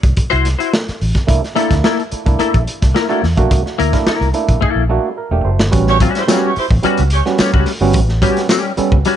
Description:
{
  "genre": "funk",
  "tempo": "108 BPM",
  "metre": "4/4",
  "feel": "straight",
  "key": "A mixolydian",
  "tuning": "A4 = 439 Hz",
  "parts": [
    { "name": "vintage muted fingered electric bass", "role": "bass", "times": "0.0-9.0 s", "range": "E1 to E2", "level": "-16 LUFS", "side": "equal", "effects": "none" },
    { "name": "crunchy breakbeat drum kit", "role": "drums", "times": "0.0-9.2 s", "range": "hi-hat, kick drum, snare drum", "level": "-16 LUFS", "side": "equal", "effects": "none" },
    { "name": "semi-hollow electric guitar", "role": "accompaniment", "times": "0.3-9.2 s", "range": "G3 to C5", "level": "-18 LUFS", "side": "left 6 dB", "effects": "ensemble chorus" },
    { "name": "mellow clav", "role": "stabs", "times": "1.3-9.0 s", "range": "G3 to C5", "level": "-19 LUFS", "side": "right 5 dB", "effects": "tape echo" },
    { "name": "mellow horn section", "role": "second line", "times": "5.9-7.2 s", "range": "C#4 to C#5", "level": "-18 LUFS", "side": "right 4 dB", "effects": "none" },
    { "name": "tambourine", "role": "percussion", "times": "6.3-8.6 s", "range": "none", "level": "-28 LUFS", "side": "left 2 dB", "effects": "none" }
  ],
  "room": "little or no reverb",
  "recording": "nothing above 10.3 kHz",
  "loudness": "-12 LUFS",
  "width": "side -10 dB against mid",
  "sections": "0.0-5.7 A section; 5.7-9.2 B section",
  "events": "drum fill 4.6-5.7; clav fill 4.6-5.7",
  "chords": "0.0 D9 (rootless); 1.3 C13; 5.7 A13",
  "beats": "0.17 0.73 | 1.28 1.84 2.40 2.95 | 3.51 4.07 4.62 5.18 | 5.73 6.29 6.84 7.39 | 7.95 8.50 9.06"
}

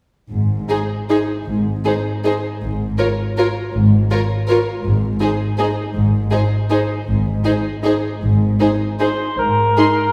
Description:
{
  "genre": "classical, orchestral ballroom waltz",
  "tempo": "144-175 BPM",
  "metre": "3/4",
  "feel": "rubato",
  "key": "Ab major",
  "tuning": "A4 = 441 Hz",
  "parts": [
    { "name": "dark studio double bass section", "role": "bass", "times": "0.3-9.7 s", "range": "Ab1", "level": "-24 LUFS", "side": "equal", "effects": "none" },
    { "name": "warm studio cello section", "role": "bass", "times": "0.3-9.7 s", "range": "Ab2", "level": "-23 LUFS", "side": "equal", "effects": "none" },
    { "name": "warm studio violin section", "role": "melody", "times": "0.7-9.9 s", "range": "C5 to C6", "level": "-30 LUFS", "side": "equal", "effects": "none" },
    { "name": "warm studio violin section", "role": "second line", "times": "0.7-9.9 s", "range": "Ab4 to Bb4", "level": "-26 LUFS", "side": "equal", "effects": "none" },
    { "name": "warm studio viola section", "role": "accompaniment", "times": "0.7-9.9 s", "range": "Eb4 to F4", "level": "-24 LUFS", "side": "equal", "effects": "none" },
    { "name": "warm cor anglais", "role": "second line", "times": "9.0-10.1 s", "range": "Bb4 to C5", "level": "-19 LUFS", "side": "equal", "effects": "none" }
  ],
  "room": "wet scoring stage reverb, RT60 2.0 s",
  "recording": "heard from further back in the room",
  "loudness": "-18 LUFS",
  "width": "mono",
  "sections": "0.3-9.4 A section",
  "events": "none",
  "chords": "0.3 Ab5; 2.6 Bb7(no3)/Ab (rootless); 4.8 Ab; 9.4 N.C.",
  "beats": "| 0.30 0.69 1.10 | 1.47 1.85 2.25 | 2.62 2.99 3.38 | 3.75 4.11 4.49 | 4.85 5.21 5.59 | 5.95 6.32 6.71 | 7.08 7.45 7.84 | 8.21 8.60 9.01 | 9.39 9.78"
}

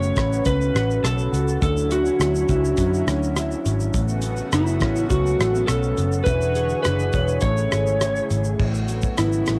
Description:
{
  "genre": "indie pop, bedroom pop",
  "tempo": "103 BPM",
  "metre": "4/4",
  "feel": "straight",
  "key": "A major",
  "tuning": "A4 = 440 Hz",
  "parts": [
    { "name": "electric slide guitar", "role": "melody", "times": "0.0-9.6 s", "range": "E4 to C#5", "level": "-26 LUFS", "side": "equal", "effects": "subtle chorus, cassette tape" },
    { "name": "electric guitar through a small old amp", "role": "accompaniment", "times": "0.0-9.6 s", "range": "A2 to C#5", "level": "-30 LUFS", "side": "equal", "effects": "lush chorus, warbly pitch drift" },
    { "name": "lush unison pad", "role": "sustained chords", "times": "0.0-9.6 s", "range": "C#3 to C#5", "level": "-33 LUFS", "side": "equal", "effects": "chorus" },
    { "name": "vintage muted picked electric bass", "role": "bass", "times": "0.0-9.6 s", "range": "E1 to F#2", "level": "-26 LUFS", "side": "equal", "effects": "tube saturation" },
    { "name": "damped 70s drum kit", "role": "drums", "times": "0.0-9.6 s", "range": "crash cymbal, hi-hat, kick drum, rim click, shaker", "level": "-28 LUFS", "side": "equal", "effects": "none" }
  ],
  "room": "small room reverb",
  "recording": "home recording on cassette",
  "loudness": "-21 LUFS",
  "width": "mono",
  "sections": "0.0-8.6 A section",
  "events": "none",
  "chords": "0.0 A69; 1.6 Dmaj9; 3.9 A69; 6.3 E13; 7.4 Amaj7; 8.6 A69",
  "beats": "0.46 1.04 | 1.62 2.21 2.79 3.37 | 3.95 4.53 5.11 5.69 | 6.27 6.85 7.43 8.02 | 8.60 9.18"
}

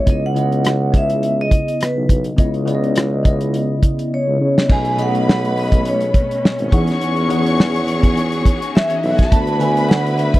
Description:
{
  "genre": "lush 1970s-style soul",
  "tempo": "104 BPM",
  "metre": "4/4",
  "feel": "swing 54% on 16ths",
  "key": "C# minor",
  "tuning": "A4 = 440 Hz",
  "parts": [
    { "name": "vibraphone with medium mallets", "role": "melody", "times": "0.0-10.4 s", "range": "B4 to A5", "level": "-20 LUFS", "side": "right 1 dB", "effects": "none" },
    { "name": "bell-like tine electric piano", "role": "accompaniment", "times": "0.0-10.4 s", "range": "B2 to F#5", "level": "-22 LUFS", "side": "left 1 dB", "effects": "phaser" },
    { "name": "warm tuba", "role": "bass", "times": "0.1-10.4 s", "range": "G#1 to C#3", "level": "-20 LUFS", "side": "equal", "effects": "none" },
    { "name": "warm soul drum kit", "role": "drums", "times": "0.1-10.4 s", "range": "crash cymbal, hi-hat, kick drum, rim click, snare drum", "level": "-14 LUFS", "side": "equal", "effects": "none" },
    { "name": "warm studio string section", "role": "second line", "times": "4.7-10.4 s", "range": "C#4 to C#6", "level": "-25 LUFS", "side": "left 2 dB", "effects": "none" },
    { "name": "warm studio string section", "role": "sustained chords", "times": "4.7-10.4 s", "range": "D3 to G#4", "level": "-27 LUFS", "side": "equal", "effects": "none" }
  ],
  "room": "little or no reverb",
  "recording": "dry, close 1970s-style studio recording",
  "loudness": "-14 LUFS",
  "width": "side -17 dB against mid",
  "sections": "0.0-4.7 A section; 4.7-10.4 B section",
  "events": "drum fill 4.1-4.7",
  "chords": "0.1 C#m9; 4.7 B13; 6.7 Emaj9; 9.3 D69",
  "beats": "| 0.07 0.65 1.23 1.81 | 2.39 2.96 3.54 4.12 | 4.70 5.28 5.86 6.43 | 7.01 7.59 8.17 8.74 | 9.32 9.90"
}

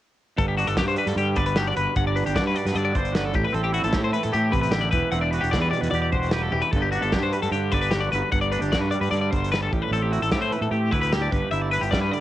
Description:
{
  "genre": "math rock and midwest emo",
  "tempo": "151 BPM",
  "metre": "4/4",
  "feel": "straight",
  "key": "G major",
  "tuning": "A4 = 440 Hz",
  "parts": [
    { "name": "twangy electric guitar", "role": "accompaniment", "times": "0.4-12.2 s", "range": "G2 to D5", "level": "-28 LUFS", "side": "right 6 dB", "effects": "analog chorus, cassette tape" },
    { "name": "twelve-string electric guitar", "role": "arpeggios", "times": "0.4-12.2 s", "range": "F#4 to F#5", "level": "-26 LUFS", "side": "left 6 dB", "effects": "cassette tape" },
    { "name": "fuzz fingered electric bass", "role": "bass", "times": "0.4-12.1 s", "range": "E1 to A2", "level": "-26 LUFS", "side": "equal", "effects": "overdrive" },
    { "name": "loose indie drum kit", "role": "drums", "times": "0.4-12.2 s", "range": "hi-hat, kick drum, snare drum, toms", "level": "-28 LUFS", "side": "equal", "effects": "cassette tape" }
  ],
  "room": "small room ambience",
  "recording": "home recording on cassette",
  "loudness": "-21 LUFS",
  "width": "side -14 dB against mid",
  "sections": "0.4-12.2 A section",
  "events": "drum fill 6.5",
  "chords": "0.4 Gmaj7; 3.3 Am7; 4.9 Em9; 6.7 Gmaj7; 9.7 Am7; 11.3 G6",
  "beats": "| 0.38 0.78 1.17 1.57 | 1.96 2.36 2.75 3.15 | 3.55 3.94 4.34 4.74 | 5.13 5.53 5.93 6.33 | 6.72 7.12 7.52 7.92 | 8.32 8.72 9.12 9.52 | 9.92 10.32 10.72 11.12 | 11.52 11.91"
}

